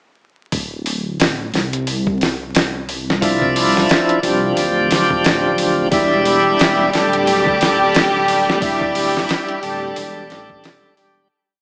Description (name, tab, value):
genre	trip hop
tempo	89 BPM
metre	4/4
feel	swing 58% on 16ths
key	D minor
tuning	A4 = 440 Hz
part	dark detuned saw bass	bass	0.5-11.3 s	D1 to C2	-27 LUFS	equal	none
part	dusty soul sampler-style drum kit	drums	0.5-11.2 s	hi-hat, kick drum, snare drum	-22 LUFS	equal	none
part	bright tonewheel organ	accompaniment	3.2-11.3 s	F3 to A4	-19 LUFS	equal	overdrive, slow rotary speaker, tremolo, vintage 12-bit sampler grit, tape echo
part	bright symphonic violin section	sustained chords	5.9-11.3 s	G3 to G4	-21 LUFS	equal	none
room	moderate echo chamber reverb, RT60 2.0 s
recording	vinyl crackle, small speaker sound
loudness	-17 LUFS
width	mono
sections	0.5-11.3 groove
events	fade-out 7.7-11.3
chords	0.5 Dmadd9; 5.9 Em7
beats	| 0.53 1.20 1.88 2.55 | 3.22 3.90 4.57 5.25 | 5.92 6.59 7.27 7.94 | 8.62 9.29 9.96 10.64